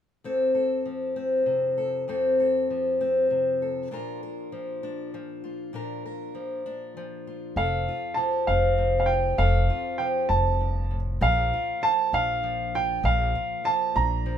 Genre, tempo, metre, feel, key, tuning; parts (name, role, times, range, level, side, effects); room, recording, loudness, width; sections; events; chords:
acoustic folk duo or small band; 66 BPM (dotted quarters); 6/8; straight; F major; A4 = 440 Hz
fingerpicked steel-string acoustic guitar; accompaniment; 0.2-14.4 s; F2 to Bb4; -26 LUFS; left 2 dB
bright upright piano; melody; 7.6-14.4 s; F5 to Bb5; -25 LUFS; right 2 dB
upright bass; bass; 7.6-14.4 s; F1 to Bb1; -26 LUFS; equal
light reverb; minimal, uncompressed stereo recording; -23 LUFS; side -9 dB against mid
0.2-7.6 A section; 7.6-14.4 B section
0.2 F; 3.9 Bb; 7.6 F; 11.2 Bb